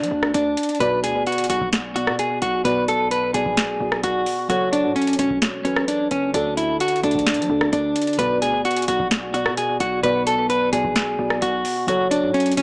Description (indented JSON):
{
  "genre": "hip hop, trap",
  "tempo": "130 BPM",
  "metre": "4/4",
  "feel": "half-time",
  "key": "B dorian",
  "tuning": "A4 = 439 Hz",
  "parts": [
    { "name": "clean electric guitar", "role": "melody", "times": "0.0-12.6 s", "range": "C#4 to B4", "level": "-20 LUFS", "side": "equal", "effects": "analog delay" },
    { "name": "hard-hitting 808-style bass", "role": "bass", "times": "0.0-12.6 s", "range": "E1 to F#3", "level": "-32 LUFS", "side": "equal", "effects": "none" },
    { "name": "booming analog drum machine", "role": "drums", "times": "0.0-12.6 s", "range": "hi-hat, kick drum, rim click, snare drum", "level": "-25 LUFS", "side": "equal", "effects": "none" },
    { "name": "muted felt-like synth keys", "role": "accompaniment", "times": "0.8-12.6 s", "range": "B2 to D5", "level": "-25 LUFS", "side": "equal", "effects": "chorus, analog delay" }
  ],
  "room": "moderate spring reverb, RT60 1.3 s",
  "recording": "echo-heavy mix, small speaker sound",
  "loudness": "-18 LUFS",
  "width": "side -31 dB against mid",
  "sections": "0.0-12.6 A section",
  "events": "none",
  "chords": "0.0 D; 0.8 Bm; 4.5 F#m; 6.3 D; 8.2 Bm; 11.9 F#m",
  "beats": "0.34 | 0.80 1.27 1.73 2.19 | 2.65 3.11 3.57 4.04 | 4.50 4.96 5.42 5.88 | 6.34 6.80 7.27 7.73 | 8.19 8.65 9.11 9.57 | 10.04 10.50 10.96 11.42 | 11.88 12.34"
}